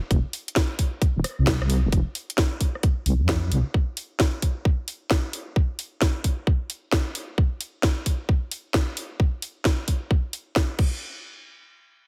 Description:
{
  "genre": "UK garage, two-step garage",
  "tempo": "132 BPM",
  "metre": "4/4",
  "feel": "swing 65% on 16ths",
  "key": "unclear",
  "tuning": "A4 = 438 Hz",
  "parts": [
    { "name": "deep soft wobble bass", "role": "bass", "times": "0.1-3.6 s", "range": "Eb1 to F2", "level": "-24 LUFS", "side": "equal", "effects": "chorus, tube saturation" },
    { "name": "electronic kick drum", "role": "drums", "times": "0.1-10.9 s", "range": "none", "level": "-24 LUFS", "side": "equal", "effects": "none" },
    { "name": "garage drum kit", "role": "drums", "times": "0.1-10.9 s", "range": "crash cymbal, hi-hat, rim click, snare drum", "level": "-30 LUFS", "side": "equal", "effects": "none" }
  ],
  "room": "digital ambience",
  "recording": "heavily compressed radio sound, multiband compression",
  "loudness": "-25 LUFS",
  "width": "mono",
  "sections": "0.0-11.0 A section; 11.0-12.1 B section",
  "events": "none",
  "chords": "none"
}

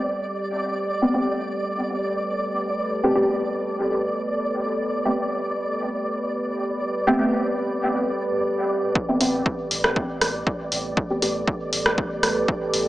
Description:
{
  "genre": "dub techno",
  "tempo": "119 BPM",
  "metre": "4/4",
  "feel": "straight",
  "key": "A minor",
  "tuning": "A4 = 440 Hz",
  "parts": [
    { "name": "deep dark ambient pad", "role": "sustained chords", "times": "0.0-12.9 s", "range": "G4 to B4", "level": "-27 LUFS", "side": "right 1 dB", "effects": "chorus, built-in reverb, sidechain pumping" },
    { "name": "flickering grainy texture", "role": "texture", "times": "0.0-12.9 s", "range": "D5", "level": "-28 LUFS", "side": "equal", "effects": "built-in reverb, sidechain pumping" },
    { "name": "deep mellow chord stab", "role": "stabs", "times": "1.0-11.4 s", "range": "A3 to G4", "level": "-24 LUFS", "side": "equal", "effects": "chorus, phaser, sidechain pumping, dub echo" },
    { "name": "electronic kick drum", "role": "drums", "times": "9.0-12.6 s", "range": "none", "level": "-25 LUFS", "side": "equal", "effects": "overdrive" },
    { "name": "pure sine sub bass", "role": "bass", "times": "9.2-12.9 s", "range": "A1", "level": "-37 LUFS", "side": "equal", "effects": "sidechain pumping" },
    { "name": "punchy analog drum machine", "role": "drums", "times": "9.2-12.8 s", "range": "hi-hat, rim click", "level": "-23 LUFS", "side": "equal", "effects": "low-pass filter on hats, low-pass filter on snare, low-pass filter on room" }
  ],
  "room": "wet lush hall reverb, RT60 1.7 s, digital ambience",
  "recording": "small speaker sound",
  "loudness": "-21 LUFS",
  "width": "side -16 dB against mid",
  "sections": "0.0-9.0 A section; 9.0-12.9 B section",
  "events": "filter sweep on ambient pad 0.0-9.0",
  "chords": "0.0 Am9"
}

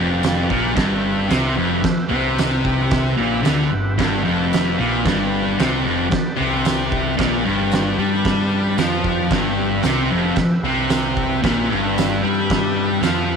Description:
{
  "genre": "garage rock duo or trio",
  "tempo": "113 BPM",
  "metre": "4/4",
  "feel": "straight",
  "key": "G major",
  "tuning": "A4 = 440 Hz",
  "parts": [
    { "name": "combo organ", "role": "sustained chords", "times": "0.0-13.4 s", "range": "G4 to B5", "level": "-28 LUFS", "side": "equal", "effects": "none" },
    { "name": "thick fuzz guitar", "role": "riff", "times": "0.0-13.4 s", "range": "F2 to G3", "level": "-18 LUFS", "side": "left 1 dB", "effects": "distortion" },
    { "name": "growling picked electric bass", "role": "bass", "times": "0.0-13.4 s", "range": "F1 to G2", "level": "-26 LUFS", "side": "left 1 dB", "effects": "overdrive" },
    { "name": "oversized low-tuned drum kit", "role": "drums", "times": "0.2-13.1 s", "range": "crash cymbal, kick drum, snare drum", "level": "-23 LUFS", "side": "right 4 dB", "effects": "none" },
    { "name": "tambourine", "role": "percussion", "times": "0.2-13.1 s", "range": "none", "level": "-36 LUFS", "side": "left 14 dB", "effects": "none" }
  ],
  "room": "moderate spring reverb, RT60 1.5 s, studio ambience",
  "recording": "1960s-style stereo",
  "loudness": "-16 LUFS",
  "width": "side -6 dB against mid",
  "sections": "0.0-13.4 A section",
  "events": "transistor combo organ fill 3.4-5.1, 8.5-9.3",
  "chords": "0.0 G"
}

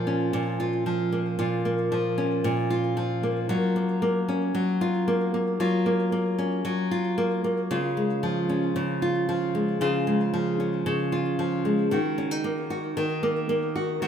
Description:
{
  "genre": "folktronica",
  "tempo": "114 BPM",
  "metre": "4/4",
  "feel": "straight",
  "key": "Eb minor",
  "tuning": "A4 = 440 Hz",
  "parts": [
    { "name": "nylon-string guitar", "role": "solo", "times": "0.0-14.1 s", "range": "Bb2 to Gb4", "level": "-23 LUFS", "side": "equal", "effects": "none" }
  ],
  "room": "wet plate reverb, RT60 3.0 s",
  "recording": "rough home demo mix",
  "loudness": "-23 LUFS",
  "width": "side -8 dB against mid",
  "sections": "0.0-11.9 A section; 11.9-14.1 B section",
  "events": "none",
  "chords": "0.0 Bbm; 3.5 Gbmaj7; 7.7 Db; 11.9 Ebm"
}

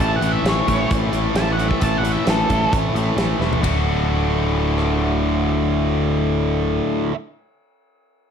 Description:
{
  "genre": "classic rock",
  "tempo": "132 BPM",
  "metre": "4/4",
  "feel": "straight",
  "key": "D major",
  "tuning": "A4 = 440 Hz",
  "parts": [
    { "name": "octave-fuzz lead guitar", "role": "melody", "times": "0.0-2.7 s", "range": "A4 to A5", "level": "-24 LUFS", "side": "right 1 dB", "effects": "distortion, plate reverb, analog delay" },
    { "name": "distorted electric guitar", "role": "riff", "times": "0.0-7.1 s", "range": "D2 to F#4", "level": "-22 LUFS", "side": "left 11 dB", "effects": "overdrive" },
    { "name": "tight distorted guitar", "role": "riff", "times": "0.0-7.2 s", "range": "D2 to F#4", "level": "-24 LUFS", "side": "right 12 dB", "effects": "distortion" },
    { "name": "modern bright picked electric bass", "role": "bass", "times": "0.0-6.8 s", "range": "D1 to A1", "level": "-22 LUFS", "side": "equal", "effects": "none" },
    { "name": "big rock drum kit", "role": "drums", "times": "0.0-4.9 s", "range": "hi-hat, kick drum, ride cymbal, rim click, snare drum, toms", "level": "-23 LUFS", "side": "equal", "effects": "none" }
  ],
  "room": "moderate studio reverb, RT60 0.6 s",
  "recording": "none",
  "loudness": "-17 LUFS",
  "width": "side -7 dB against mid",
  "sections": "0.0-3.6 A section; 3.6-7.3 B section",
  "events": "lead electric guitar solo 0.0-3.6; drum fill 3.4",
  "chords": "0.0 A5; 3.6 D"
}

